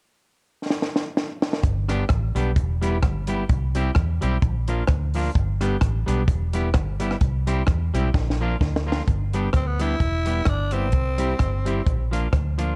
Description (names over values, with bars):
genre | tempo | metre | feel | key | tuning
ska | 129 BPM | 4/4 | swing 55% on 8ths | G major | A4 = 439 Hz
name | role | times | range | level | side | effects
compact cocktail drum kit | drums | 0.7-12.7 s | hi-hat, kick drum, rim click, snare drum | -26 LUFS | equal | none
vintage muted fingered electric bass | bass | 1.6-12.7 s | E1 to E2 | -26 LUFS | equal | none
semi-hollow electric guitar | accompaniment | 1.9-12.7 s | F3 to G4 | -30 LUFS | equal | none
growling tenor saxophone | melody | 9.6-12.1 s | B3 to E4 | -30 LUFS | equal | none
room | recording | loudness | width
small room ambience | none | -23 LUFS | mono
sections
0.0-1.6 A section; 1.6-9.1 B section; 9.1-12.8 C section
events
drum fill 0.7-1.6, 8.1-9.1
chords
0.0 N.C.; 1.6 G; 2.6 Em; 3.5 C; 4.4 Bb; 5.4 G; 6.3 Em; 7.2 C; 8.1 Bb; 9.1 G; 10.0 Em; 10.9 C; 11.9 Bb